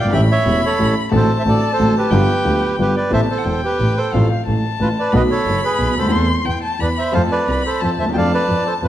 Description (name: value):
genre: tango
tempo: 179 BPM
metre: 3/4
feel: rubato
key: A minor from 3.1 s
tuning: A4 = 440 Hz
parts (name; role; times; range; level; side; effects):
- bandoneon; melody; 0.0-8.9 s; F4 to G5; -20 LUFS; right 2 dB; none
- warm violin; second line; 0.0-8.9 s; F5 to C6; -23 LUFS; left 3 dB; none
- clear concert grand piano; accompaniment; 0.0-8.9 s; E1 to A4; -20 LUFS; left 1 dB; none
- clear double bass; bass; 0.0-8.9 s; E1 to F2; -20 LUFS; right 1 dB; none
room: wet large studio reverb, RT60 1.3 s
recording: vinyl crackle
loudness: -14 LUFS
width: side -12 dB against mid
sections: 0.0-3.1 A section; 3.1-8.9 B section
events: none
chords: 0.1 A7; 1.1 D7/A; 2.1 G7; 3.1 Amadd9; 4.1 F/A; 5.1 B7; 6.1 Am/E; 6.8 E5; 7.1 F; 8.2 Dm/F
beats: | 0.12 0.46 0.79 | 1.11 1.45 1.78 | 2.11 2.44 2.78 | 3.12 3.46 3.79 | 4.13 4.46 4.80 | 5.13 5.46 5.79 | 6.12 6.46 6.80 | 7.14 7.48 7.81 | 8.15 8.49 8.82